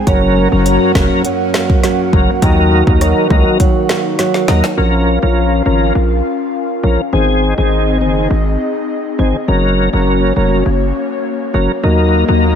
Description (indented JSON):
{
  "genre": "dancehall",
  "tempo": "102 BPM",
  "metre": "4/4",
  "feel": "straight",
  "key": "Bb minor",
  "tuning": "A4 = 440 Hz",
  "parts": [
    { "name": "airy breathy pad", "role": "sustained chords", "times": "0.0-12.6 s", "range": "Bb3 to Gb5", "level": "-18 LUFS", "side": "left 1 dB", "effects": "chorus, sidechain pumping" },
    { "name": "flamenco guitar", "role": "arpeggios", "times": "0.0-5.3 s", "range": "Gb2 to Eb4", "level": "-18 LUFS", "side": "right 5 dB", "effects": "ping-pong delay" },
    { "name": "tonewheel organ", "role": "accompaniment", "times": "0.1-12.6 s", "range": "Eb3 to Bb4", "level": "-15 LUFS", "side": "left 2 dB", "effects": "chorus vibrato, slow rotary speaker" },
    { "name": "hard-hitting 808-style bass", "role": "bass", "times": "0.1-12.6 s", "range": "F1 to Eb2", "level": "-15 LUFS", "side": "equal", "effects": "none" },
    { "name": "deep house drum kit", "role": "drums", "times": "0.1-4.8 s", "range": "hi-hat, kick drum, rim click, snare drum", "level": "-15 LUFS", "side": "equal", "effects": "none" },
    { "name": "swell", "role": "sound effects", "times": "11.1-12.6 s", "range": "none", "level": "-23 LUFS", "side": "left 4 dB", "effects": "none" }
  ],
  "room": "light reverb",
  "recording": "none",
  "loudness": "-11 LUFS",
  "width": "side -8 dB against mid",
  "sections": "0.0-4.8 A section; 4.8-12.6 B section",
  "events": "drum fill 4.2-4.8; swell 11.1-12.6",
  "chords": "0.1 Gb; 2.4 Ebm; 4.8 Bbm; 7.1 Ab; 9.5 Gb; 11.8 Ebm"
}